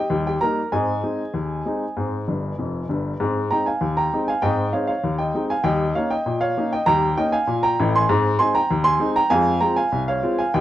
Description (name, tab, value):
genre	ragtime piano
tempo	98 BPM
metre	2/4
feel	straight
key	Ab major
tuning	A4 = 440 Hz
part	clear upright piano	solo	0.0-10.6 s	F1 to C6	-19 LUFS	equal	none
room	moderate club reverb, RT60 0.6 s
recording	worn, warbling old tape, cassette tape, warbly pitch drift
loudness	-19 LUFS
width	side -13 dB against mid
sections	0.0-3.2 A section; 3.2-10.6 A section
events	upright piano fill 2.3-3.2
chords	0.1 Eb; 0.7 Ab; 5.7 Eb7; 8.1 Ab; 9.3 Fm